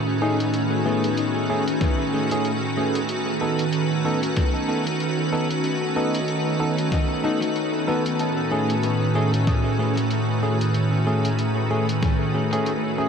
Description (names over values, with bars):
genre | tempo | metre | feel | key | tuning
ambient dub | 94 BPM | 4/4 | swing 58% on 16ths | unclear | A4 = 440 Hz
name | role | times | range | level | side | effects
soft additive organ-like pad | sustained chords | 0.0-13.1 s | A2 to B4 | -22 LUFS | right 1 dB | ensemble chorus, built-in reverb
concert harp | arpeggios | 0.0-11.0 s | B3 to D#6 | -30 LUFS | left 6 dB | ping-pong delay
bell-like tine electric piano | stabs | 0.2-13.1 s | A3 to A4 | -26 LUFS | right 1 dB | dub echo
lo-fi sampler-style drum kit | drums | 0.4-12.8 s | hi-hat, snare drum | -34 LUFS | left 1 dB | small room ambience, dub echo
electronic kick drum | drums | 1.8-12.2 s | none | -23 LUFS | equal | overdrive, small room ambience
room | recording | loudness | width
wet huge ambient reverb, RT60 3.6 s | dreamy mix soaked in reverb | -20 LUFS | side -6 dB against mid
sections
0.0-13.1 A section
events
none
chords
0.0 Amaj7; 3.1 B7; 8.2 Amaj7